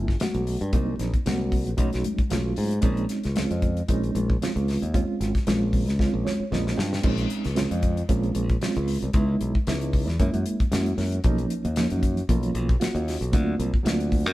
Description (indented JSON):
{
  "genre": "electric jazz fusion",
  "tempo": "114 BPM",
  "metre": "4/4",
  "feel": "swing 54% on 16ths",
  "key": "unclear",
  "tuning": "A4 = 439 Hz",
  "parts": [
    { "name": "reed electric piano", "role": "accompaniment", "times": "0.0-14.3 s", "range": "E#3 to G5", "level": "-28 LUFS", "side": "right 2 dB", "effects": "fast tremolo" },
    { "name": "modern bright fingered electric bass", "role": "bass", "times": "0.0-14.3 s", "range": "G1 to Ab2", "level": "-26 LUFS", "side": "equal", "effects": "none" },
    { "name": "damped 70s drum kit", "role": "drums", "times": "0.1-14.3 s", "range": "crash cymbal, hi-hat, kick drum, snare drum", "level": "-26 LUFS", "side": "equal", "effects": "none" },
    { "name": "congas", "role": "percussion", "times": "0.2-6.7 s", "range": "none", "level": "-33 LUFS", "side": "left 4 dB", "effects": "none" }
  ],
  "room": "moderate stone room reverb, RT60 1.1 s",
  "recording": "band playing live in one room",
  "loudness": "-22 LUFS",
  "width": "side -16 dB against mid",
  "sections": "0.0-7.0 A section; 7.0-14.3 A section",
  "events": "drum fill 6.0-7.0; reed electric piano fill 6.0-7.0",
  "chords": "0.0 Gmaj13; 0.7 Cm7b5; 1.8 B9; 2.8 Bbm11; 9.1 Dbm7; 10.2 Gb9; 11.2 Bmaj9#11; 13.3 D7alt"
}